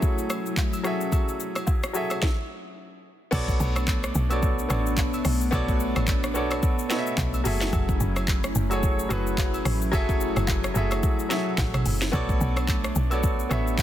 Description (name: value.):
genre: amapiano.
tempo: 109 BPM.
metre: 4/4.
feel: swing 58% on 16ths.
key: B minor.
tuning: A4 = 440 Hz.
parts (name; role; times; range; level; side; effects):
clear concert grand piano; accompaniment; 0.0-13.8 s; F#3 to E5; -29 LUFS; equal; none.
hollow soft pad; sustained chords; 0.0-13.8 s; F#3 to E4; -32 LUFS; equal; chorus, sidechain pumping.
afro-pop drum kit; drums; 0.0-13.8 s; crash cymbal, handclaps, hi-hat, kick drum, rim click, shaker, snare drum, toms; -26 LUFS; equal; none.
agogo bells and woodblock; percussion; 0.3-13.8 s; none; -38 LUFS; right 2 dB; none.
woody log drum bass; bass; 3.3-13.8 s; F#1 to B1; -27 LUFS; equal; none.
room: little or no reverb.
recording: dense, heavily limited modern master.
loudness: -22 LUFS.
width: side -12 dB against mid.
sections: 0.0-3.3 A section; 3.3-13.8 B section.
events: stop 2.2-3.3; drop 3.3-13.8.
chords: 0.0 F#m7; 3.3 Bm7; 7.5 F#m7; 12.1 Bm7.